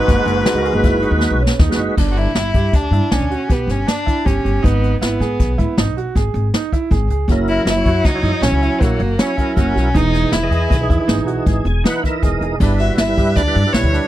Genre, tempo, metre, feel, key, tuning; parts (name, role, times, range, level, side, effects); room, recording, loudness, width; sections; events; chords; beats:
progressive instrumental, band music in an uneven meter; 158 BPM; 7/4; straight; A4 = 440 Hz
rich violin; melody; 0.0-14.1 s; A#3 to E5; -21 LUFS; left 1 dB
bright trombone; second line; 0.0-1.6 s; G#2; -26 LUFS; left 7 dB; tape echo
tonewheel organ; accompaniment; 0.0-2.0, 7.3-14.1 s; E3 to G#5; -21 LUFS; right 1 dB; overdrive, chorus vibrato, slow rotary speaker
bright grand piano; arpeggios; 0.0-14.1 s; C#4 to G#4; -24 LUFS; right 8 dB
upright bass; bass; 0.1-14.0 s; E1 to G#2; -18 LUFS; equal
jazz brush drum kit; drums; 0.1-14.0 s; crash cymbal, hi-hat, kick drum, snare drum; -17 LUFS; left 1 dB
small room ambience; dry, close 1970s-style studio recording; -14 LUFS; side -14 dB against mid
0.0-2.0 A section; 2.0-12.6 B section; 12.6-14.1 B section
drum fill 1.2-2.0; tonewheel organ fill 11.5-12.6
0.0 G#m7; 2.0 G5; 4.6 Emaj7/G#; 7.3 F#7; 10.0 Emaj7; 12.6 G6
0.09 0.47 0.84 1.22 1.60 | 1.98 2.36 2.74 3.12 3.50 3.88 4.26 | 4.64 5.02 5.40 5.78 6.16 6.54 6.92 | 7.30 7.68 8.06 8.44 8.82 9.20 9.58 | 9.96 10.34 10.71 11.09 11.47 11.85 12.23 | 12.61 12.99 13.37 13.75